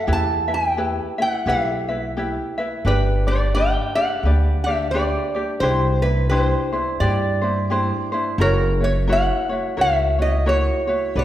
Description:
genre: Hawaiian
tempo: 87 BPM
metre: 4/4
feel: swing 59% on 8ths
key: G major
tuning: A4 = 439 Hz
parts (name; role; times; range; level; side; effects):
- lap resonator guitar; melody; 0.0-11.2 s; A#4 to A5; -22 LUFS; equal; none
- ukulele; accompaniment; 0.0-11.2 s; D4 to E5; -24 LUFS; left 1 dB; none
- upright bass; bass; 0.1-11.2 s; F#1 to G2; -21 LUFS; equal; none
room: wet recital hall reverb, RT60 1.5 s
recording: heard from further back in the room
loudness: -18 LUFS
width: side -12 dB against mid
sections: 0.0-2.8 A section; 2.8-11.2 B section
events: none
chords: 0.1 Em; 2.8 G; 5.6 Cadd9; 8.4 F#7

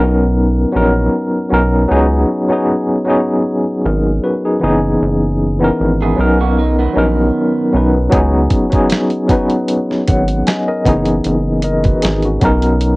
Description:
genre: R&B, neo-soul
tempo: 77 BPM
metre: 4/4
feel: swing 54% on 16ths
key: unclear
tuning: A4 = 442 Hz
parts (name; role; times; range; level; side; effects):
- mellow tine electric piano; accompaniment; 0.0-13.0 s; E3 to G#5; -14 LUFS; left 1 dB; medium tremolo, cassette tape
- rubbery square bass; bass; 0.0-13.0 s; F#1 to C#2; -16 LUFS; equal; none
- electric guitar through a small old amp; second line; 6.0-7.9 s; D#3 to G#4; -20 LUFS; right 6 dB; cassette tape
- dusty soul sampler-style drum kit; drums; 8.1-13.0 s; hi-hat, kick drum, snare drum; -16 LUFS; equal; cassette tape
room: light reverb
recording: home recording on cassette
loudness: -12 LUFS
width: side -22 dB against mid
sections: 0.0-13.0 A section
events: none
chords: 0.0 Bmaj9; 1.9 C#9sus4; 4.6 F#13sus4; 6.2 Bmaj9; 8.1 C#9sus4; 10.9 F#13sus4; 12.4 Bmaj9

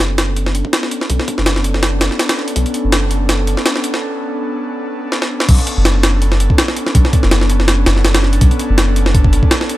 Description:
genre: drum and bass, jungle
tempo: 164 BPM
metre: 4/4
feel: swing 55% on 16ths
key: B minor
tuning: A4 = 441 Hz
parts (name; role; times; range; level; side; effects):
- airy breathy pad; sustained chords; 0.0-9.8 s; B3 to A4; -20 LUFS; equal; chorus
- soft dub sub bass; bass; 0.0-9.4 s; F#1 to B1; -14 LUFS; equal; none
- jungle sampler-style drum kit; drums; 0.0-9.8 s; crash cymbal, hi-hat, kick drum, snare drum; -15 LUFS; equal; high-pass filter on kick, high-pass filter on hats, high-pass filter on snare, high-pass filter on cymbals
room: digital ambience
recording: none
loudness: -12 LUFS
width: side -16 dB against mid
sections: 0.0-5.5 A section; 5.5-9.8 B section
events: build-up 0.0-5.5; filter sweep on analog synth pad 0.0-5.5; break 4.0-5.5; drum fill 5.1-5.5; drop 5.5-9.8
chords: 0.0 Bm9

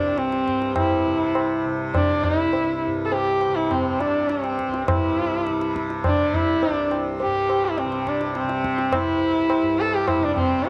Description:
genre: indian classical, Hindustani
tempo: 103 BPM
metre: 7/4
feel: straight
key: unclear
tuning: A4 = 440 Hz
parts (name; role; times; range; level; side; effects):
- warm sarangi; melody; 0.0-10.7 s; C4 to A4; -24 LUFS; equal; none
- tanpura; drone; 0.0-10.7 s; C2 to C3; -32 LUFS; equal; none
- tabla; percussion; 0.2-10.7 s; none; -28 LUFS; equal; none
room: moderate plate reverb, RT60 2.7 s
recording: none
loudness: -22 LUFS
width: mono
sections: 0.0-4.9 A section; 4.9-10.7 B section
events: speeding up 0.0-10.7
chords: none

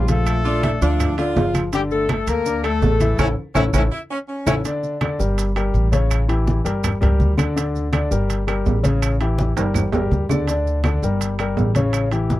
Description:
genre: latin, salsa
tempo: 165 BPM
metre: 4/4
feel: straight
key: unclear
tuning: A4 = 440 Hz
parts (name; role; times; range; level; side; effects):
- clear horn section; melody; 0.0-4.6 s; G3 to Bb4; -22 LUFS; left 4 dB; none
- warm grand piano; accompaniment; 0.0-12.4 s; C#3 to D6; -23 LUFS; left 2 dB; none
- upright bass; bass; 0.0-12.4 s; G1 to D2; -21 LUFS; equal; none
- congas; percussion; 0.1-12.4 s; none; -24 LUFS; equal; none
- maracas; percussion; 0.1-12.4 s; none; -36 LUFS; right 13 dB; none
- timbales; percussion; 0.1-12.3 s; none; -28 LUFS; right 7 dB; none
- claves; percussion; 0.3-12.1 s; none; -32 LUFS; right 13 dB; none
- bright saxophone section; second line; 0.4-4.6 s; C#4 to F4; -25 LUFS; right 3 dB; none
room: light reverb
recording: dark, warm production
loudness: -17 LUFS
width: side -15 dB against mid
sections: 0.0-4.6 A section; 4.6-12.4 B section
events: band accent 3.2-4.6; drum fill 3.6-4.6, 9.6-10.5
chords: 0.3 Bb; 1.7 Gsus2; 3.2 A; 4.6 Gm; 6.1 A7; 6.8 Gm; 9.0 A7; 9.8 Gm

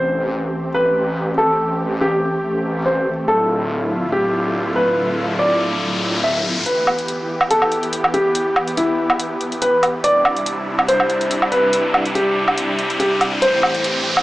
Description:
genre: heavy wobble dubstep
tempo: 142 BPM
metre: 4/4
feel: swing 54% on 16ths, half-time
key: E phrygian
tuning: A4 = 440 Hz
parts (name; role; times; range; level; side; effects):
- dark baby grand piano; melody; 0.0-14.2 s; E4 to E5; -18 LUFS; equal; digital delay
- supersaw pad; sustained chords; 0.0-14.2 s; E2 to G4; -24 LUFS; equal; low-pass filter
- wobble bass; bass; 0.0-6.6 s; D1 to A1; -24 LUFS; equal; chorus, overdrive
- riser; sound effects; 4.4-14.2 s; none; -26 LUFS; left 1 dB; none
- electronic hi-hat and woodblock; drums; 6.7-14.2 s; none; -19 LUFS; right 1 dB; high-pass filter on hats, small room ambience, high-pass filter on perc
room: moderate plate reverb, RT60 1.7 s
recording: small speaker sound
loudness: -16 LUFS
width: side -17 dB against mid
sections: 0.0-6.7 A section; 6.7-14.2 B section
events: filter sweep on supersaw synth 0.0-6.7; riser 4.4-6.7, 6.7-14.2; build-up 6.7-14.2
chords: 0.0 Am7; 3.3 Dmadd9; 6.7 Em; 10.0 Cadd9; 13.4 Am7

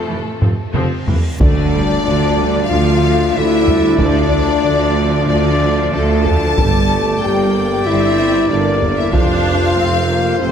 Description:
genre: cinematic, epic orchestral film score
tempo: 93 BPM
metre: 4/4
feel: straight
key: D minor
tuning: A4 = 439 Hz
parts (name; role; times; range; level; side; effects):
- warm symphonic violin section; melody; 0.0-10.5 s; A4 to A5; -25 LUFS; left 5 dB; none
- clear studio violin section; second line; 0.0-10.5 s; A3 to A5; -23 LUFS; left 4 dB; none
- clear symphonic viola section; accompaniment; 0.0-10.5 s; E3 to D4; -24 LUFS; right 2 dB; none
- warm French horn section; sustained chords; 0.0-10.5 s; A3 to A4; -18 LUFS; left 3 dB; none
- clear symphonic cello section; bass; 0.0-10.5 s; F2 to D3; -24 LUFS; right 3 dB; none
- reverse cymbal and impact; sound effects; 1.0-4.0 s; none; -29 LUFS; equal; none
- rich symphonic double bass section; bass; 0.1-10.5 s; F1 to F2; -20 LUFS; right 4 dB; none
- warm tuba; bass; 0.1-10.5 s; F1 to D2; -22 LUFS; right 3 dB; none
- taiko ensemble; drums; 0.4-9.7 s; none; -18 LUFS; equal; none
- clear woodwind section; sustained chords; 1.4-10.5 s; F3 to D5; -24 LUFS; equal; none
- timpani; percussion; 1.4-2.3 s; D3; -24 LUFS; right 1 dB; none
room: wet concert hall reverb, RT60 2.4 s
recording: none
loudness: -12 LUFS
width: side -8 dB against mid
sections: 0.0-1.4 A section; 1.4-10.5 B section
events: drum fill 0.4-1.4; reverse cymbal 1.0-1.4; impact 1.4-4.0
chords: 0.0 F; 1.4 Dm; 6.6 Gm; 9.1 F

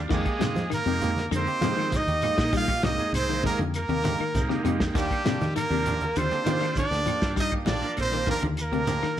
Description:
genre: afrobeat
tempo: 99 BPM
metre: 4/4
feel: straight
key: F dorian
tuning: A4 = 440 Hz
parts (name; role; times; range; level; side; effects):
- combo organ; accompaniment; 0.0-8.5 s; G3 to Bb4; -34 LUFS; right 3 dB; none
- fingered electric bass; bass; 0.0-9.1 s; Bb1 to F3; -30 LUFS; equal; none
- brilliant trumpet; melody; 0.1-9.2 s; G4 to F5; -28 LUFS; right 1 dB; none
- edgy alto saxophone; second line; 0.1-9.2 s; G3 to F4; -34 LUFS; right 4 dB; slapback echo
- electric guitar at the edge of break-up; arpeggios; 0.1-9.2 s; C3 to G3; -32 LUFS; left 9 dB; none
- semi-hollow electric guitar; stabs; 0.1-9.1 s; F3 to G4; -34 LUFS; right 5 dB; spring reverb
- warm soul drum kit; drums; 0.1-9.1 s; crash cymbal, hi-hat, kick drum, snare drum; -31 LUFS; equal; none
- congas; percussion; 0.1-9.2 s; none; -35 LUFS; right 2 dB; none
- shekere; percussion; 0.1-9.2 s; none; -36 LUFS; right 1 dB; none
- claves; percussion; 0.3-9.2 s; none; -43 LUFS; left 9 dB; none
room: moderate large studio reverb, RT60 0.9 s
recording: none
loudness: -23 LUFS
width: side -11 dB against mid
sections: 0.1-9.2 A section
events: none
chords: 0.1 Fm11; 5.0 Ebmaj9

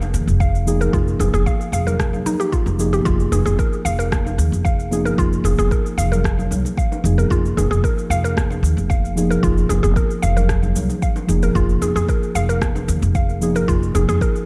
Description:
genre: organic downtempo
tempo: 113 BPM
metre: 4/4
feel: straight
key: F minor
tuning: A4 = 438 Hz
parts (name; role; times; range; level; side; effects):
- muted felt-like synth keys; accompaniment; 0.0-14.5 s; F3 to Ab4; -26 LUFS; equal; chorus, sidechain pumping, tape echo
- mallet-like synth pluck; arpeggios; 0.0-14.3 s; Eb4 to F5; -27 LUFS; equal; chorus, tape echo
- upright bass; bass; 0.0-14.2 s; F1 to Eb2; -22 LUFS; equal; tube saturation, sidechain pumping
- electronic shaker and rim click; drums; 0.0-14.5 s; none; -33 LUFS; equal; none
- bongos and congas; percussion; 0.0-14.2 s; none; -32 LUFS; equal; none
- electronic kick drum; drums; 0.4-14.3 s; none; -23 LUFS; equal; none
room: light reverb, digital ambience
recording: dark, warm production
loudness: -18 LUFS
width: mono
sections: 0.0-14.5 A section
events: none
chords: 0.0 Fm

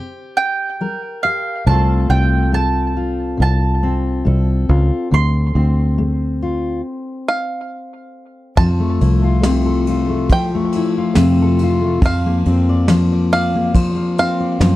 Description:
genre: acoustic folk duo or small band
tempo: 70 BPM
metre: 4/4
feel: straight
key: unclear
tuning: A4 = 440 Hz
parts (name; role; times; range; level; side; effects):
- mandolin; second line; 0.0-7.7 s; C5 to C6; -20 LUFS; right 3 dB; tape echo
- fingerpicked steel-string acoustic guitar; accompaniment; 0.0-14.8 s; C3 to D5; -19 LUFS; left 2 dB; none
- fingered electric bass; bass; 1.7-14.8 s; C2 to F#2; -16 LUFS; equal; none
- bluegrass banjo; melody; 7.3-14.8 s; F5 to A5; -21 LUFS; right 2 dB; tape echo
- soft brush drum kit; drums; 8.6-14.8 s; kick drum, ride cymbal, snare drum; -21 LUFS; equal; none
room: light reverb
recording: none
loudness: -14 LUFS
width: side -16 dB against mid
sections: 0.0-8.6 A section; 8.6-14.8 B section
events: mandolin solo 0.0-8.6; stop 6.9-8.6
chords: 0.0 C7(no3); 1.7 F/C; 5.1 Dm7; 8.6 Fmaj7; 12.0 Bbadd9/F

